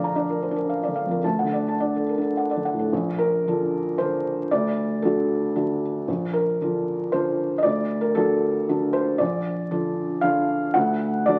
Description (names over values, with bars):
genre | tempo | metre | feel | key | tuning
neoclassical minimalist piano | 115 BPM | 3/4 | rubato | Bb major | A4 = 439 Hz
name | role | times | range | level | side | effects
felt-muted upright piano | solo | 0.0-11.4 s | Bb1 to Bb5 | -24 LUFS | equal | none
room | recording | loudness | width
wet large studio reverb, RT60 1.2 s | very old 78 rpm record, vinyl crackle, nothing above 10.9 kHz | -24 LUFS | mono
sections
0.0-2.9 A section; 2.9-11.4 B section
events
none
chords
0.0 Bb; 1.2 D; 2.9 Bb; 4.5 D; 6.1 Bb; 7.6 D; 9.2 Bb; 10.8 D